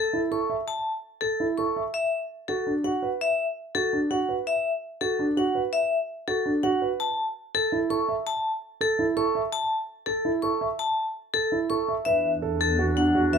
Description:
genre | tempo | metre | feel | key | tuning
classical, minimalist pattern music | 332 BPM (eighths) | 7/8 | straight | unclear | A4 = 441 Hz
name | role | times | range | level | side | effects
vibraphone with hard mallets | melody | 0.0-13.4 s | A4 to C#6 | -26 LUFS | left 5 dB | none
dark concert grand piano | arpeggios | 0.0-13.4 s | D4 to E5 | -26 LUFS | right 5 dB | none
warm clarinet | second line | 12.1-13.4 s | D4 | -28 LUFS | equal | none
warm symphonic double bass section | bass | 12.1-13.4 s | E2 | -28 LUFS | equal | none
room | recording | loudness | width
light reverb | none | -24 LUFS | side -6 dB against mid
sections
0.0-12.1 A section; 12.1-13.4 A section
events
none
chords
0.0 A/E; 1.9 E7sus2 (rootless); 7.0 A5/E; 12.1 E9sus4

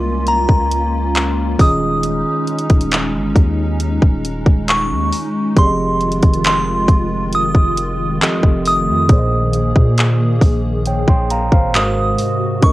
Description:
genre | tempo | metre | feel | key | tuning
contemporary R&B | 68 BPM | 4/4 | straight | F minor | A4 = 441 Hz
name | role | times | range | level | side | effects
glassy synth bell | melody | 0.0-12.7 s | Bb5 to Eb6 | -19 LUFS | equal | chorus, tremolo
mellow tine electric piano | accompaniment | 0.0-12.7 s | Ab2 to C6 | -21 LUFS | right 2 dB | medium stereo tremolo
hollow soft pad | sustained chords | 0.0-12.7 s | C3 to Ab4 | -22 LUFS | left 1 dB | ensemble chorus
long sustained 808-style bass | bass | 0.0-12.7 s | Eb1 to Bb2 | -21 LUFS | equal | none
trap drum kit | drums | 0.3-12.7 s | handclaps, hi-hat, kick drum | -13 LUFS | equal | cassette tape
room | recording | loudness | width
little or no reverb | home recording on cassette | -13 LUFS | side -17 dB against mid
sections
0.0-12.7 A section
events
none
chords
0.0 Db6; 1.6 Eb7sus4; 5.6 Fm7; 8.2 F7; 9.1 Bb7sus4; 11.7 Ab7

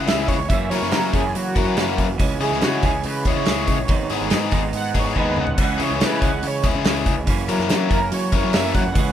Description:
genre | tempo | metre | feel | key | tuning
indie rock | 142 BPM | 4/4 | straight | C# dorian | A4 = 441 Hz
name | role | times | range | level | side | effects
octave-doubled lead | melody | 0.0-9.1 s | F#4 to F#5 | -26 LUFS | right 4 dB | chorus, analog delay
overdriven electric guitar | riff | 0.0-8.8 s | F#3 to A#4 | -23 LUFS | left 9 dB | none
overdriven electric guitar | riff | 0.0-9.1 s | F#2 to D#4 | -27 LUFS | right 7 dB | wide subtle chorus
fuzz picked electric bass | bass | 0.0-9.1 s | G#1 to F#3 | -25 LUFS | equal | overdrive
loose indie drum kit | drums | 0.1-9.1 s | crash cymbal, hi-hat, kick drum, snare drum, toms | -22 LUFS | equal | none
room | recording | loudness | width
light reverb | rough home demo mix | -18 LUFS | side -10 dB against mid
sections
0.0-9.1 A section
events
analog synth lead solo 0.0-9.1; drum fill 5.2-5.6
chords
0.0 C#m; 0.5 F#7; 2.2 C#m; 3.9 G#m; 5.6 C#m; 7.3 F#7

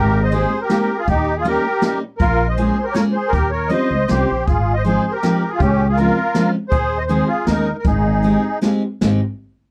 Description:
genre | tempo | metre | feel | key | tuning
musette waltz | 159 BPM | 3/4 | rubato | Ab major | A4 = 439 Hz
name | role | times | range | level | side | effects
musette accordion | melody | 0.0-8.6 s | Db4 to Eb5 | -22 LUFS | equal | none
upright bass | bass | 0.0-9.2 s | Ab1 to Eb2 | -22 LUFS | equal | none
picked steel-string acoustic guitar | accompaniment | 0.3-9.2 s | Eb3 to Ab4 | -22 LUFS | equal | none
jazz brush drum kit | drums | 0.3-9.1 s | crash cymbal, hi-hat, kick drum, snare drum | -24 LUFS | equal | none
room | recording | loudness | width
little or no reverb | none | -18 LUFS | mono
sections
0.0-9.0 A section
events
none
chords
0.0 Abmaj9; 1.1 Eb7; 2.2 Bbm7; 3.3 Eb13; 4.5 Ab6; 5.6 Dbmaj7; 6.7 Ab/Eb; 7.5 Eb7sus4; 7.9 Abmaj7

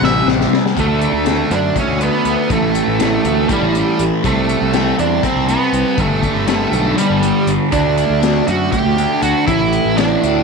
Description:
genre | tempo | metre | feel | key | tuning
psychedelic rock | 241 BPM (eighths) | 7/8 | straight | unclear | A4 = 441 Hz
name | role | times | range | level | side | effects
octave-fuzz lead guitar | melody | 0.0-10.4 s | G3 to E5 | -19 LUFS | right 5 dB | distortion, tape echo
fuzz guitar | riff | 0.0-10.4 s | G2 to D4 | -16 LUFS | equal | distortion, phaser
fuzz fingered electric bass | bass | 0.0-10.4 s | G1 to F#2 | -20 LUFS | equal | overdrive
crunchy breakbeat drum kit | drums | 0.0-10.3 s | hi-hat, kick drum, snare drum | -22 LUFS | left 8 dB | none
room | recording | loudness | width
little or no reverb | 1960s-style stereo | -13 LUFS | side -4 dB against mid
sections
0.8-10.4 A section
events
drum fill 0.0-0.8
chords
0.0 C5; 0.8 D5; 2.5 A7(no3); 4.2 C5; 6.0 G5; 7.7 D; 9.5 Asus4

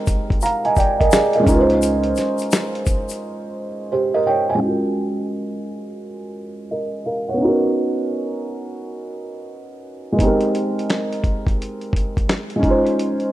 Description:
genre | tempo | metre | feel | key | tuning
lo-fi hip hop | 86 BPM | 4/4 | swing 65% on 16ths | F# major | A4 = 440 Hz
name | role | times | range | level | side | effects
felt-muted upright piano | accompaniment | 0.0-13.3 s | G#3 to A#5 | -19 LUFS | right 1 dB | cassette tape, low-pass filter
dusty soul sampler-style drum kit | drums | 0.1-3.2, 10.2-13.3 s | finger snaps, hi-hat, kick drum, snare drum | -20 LUFS | equal | none
tube shaker | percussion | 0.1-3.2 s | none | -32 LUFS | left 9 dB | none
upright bass | bass | 1.0-2.1 s | B#1 to C#2 | -26 LUFS | equal | none
room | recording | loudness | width
light reverb, small room ambience | rough home demo mix | -17 LUFS | side -14 dB against mid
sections
0.0-4.6 A section; 4.6-13.3 B section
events
silent gap 3.2-4.6; filter sweep on felt piano 4.6-13.3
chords
0.0 G#maj9; 1.5 C#maj9; 4.6 F#maj9; 7.4 Bmaj9; 10.2 G#maj9; 12.6 C#maj9

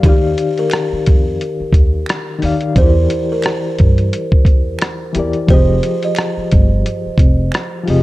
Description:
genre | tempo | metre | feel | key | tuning
lo-fi hip hop | 88 BPM | 4/4 | swing 57% on 16ths | F dorian | A4 = 437 Hz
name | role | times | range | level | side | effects
reed electric piano | accompaniment | 0.0-8.0 s | Eb3 to F5 | -20 LUFS | left 3 dB | fast tremolo
upright bass | bass | 0.0-8.0 s | F1 to G2 | -16 LUFS | equal | none
lo-fi sampler-style drum kit | drums | 0.0-8.0 s | hi-hat, kick drum, rim click | -13 LUFS | equal | vintage 12-bit sampler grit
buzzing kalimba | melody | 0.1-8.0 s | G4 to Eb5 | -21 LUFS | right 2 dB | tape echo
finger snap | percussion | 0.7-7.7 s | none | -32 LUFS | right 5 dB | none
room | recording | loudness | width
studio reverb | dark, warm production | -12 LUFS | side -18 dB against mid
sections
0.0-8.0 A section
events
none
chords
0.0 Ebmaj9; 2.8 Em7b5; 5.5 Fm9

